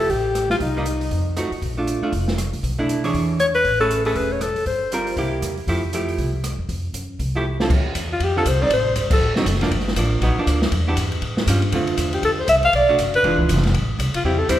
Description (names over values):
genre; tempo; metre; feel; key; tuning
jazz, small-group swing and bop; 238 BPM; 4/4; swing 60% on 8ths; F major; A4 = 440 Hz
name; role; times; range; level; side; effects
breathy alto saxophone; melody; 0.0-1.3, 3.4-5.1, 8.1-9.3, 12.1-14.6 s; Eb4 to F5; -19 LUFS; left 1 dB; none
archtop guitar, miked and amplified; accompaniment; 0.0-14.6 s; D3 to C#5; -24 LUFS; right 2 dB; none
upright bass; bass; 0.0-14.6 s; E1 to A2; -23 LUFS; equal; none
open jazz drum kit; drums; 0.0-14.6 s; crash cymbal, hi-hat, kick drum, ride cymbal, rim click, snare drum; -25 LUFS; equal; none
room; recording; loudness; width
wet recital hall reverb, RT60 1.4 s; recorded in a church or concert hall; -18 LUFS; side -12 dB against mid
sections
0.0-7.7 A section; 7.7-14.6 B section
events
drum fill 7.4; band accent 9.1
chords
0.0 Fmaj9 (rootless); 0.6 Cm7; 1.1 F7b9; 1.6 Bbmaj7; 2.6 Bm11; 3.1 E6; 3.6 Amaj9; 4.7 Gm7; 5.2 C7; 5.7 Fmaj9; 7.7 Dm7; 8.7 Gsus24; 9.2 D7b9; 9.7 Gm7; 10.7 Em7; 11.2 A7b13; 11.7 Dm7; 12.7 Bm7; 13.2 E7b9; 13.7 Am7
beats
0.10 0.35 | 0.60 0.86 1.11 1.37 | 1.62 1.87 2.13 2.38 | 2.63 2.89 3.14 3.40 | 3.65 3.90 4.16 4.41 | 4.66 4.92 5.17 5.42 | 5.67 5.93 6.18 6.43 | 6.69 6.94 7.19 7.44 | 7.70 7.95 8.20 8.45 | 8.70 8.96 9.21 9.46 | 9.71 9.96 10.21 10.47 | 10.72 10.97 11.22 11.47 | 11.72 11.98 12.23 12.48 | 12.73 12.98 13.24 13.49 | 13.74 13.99 14.24 14.49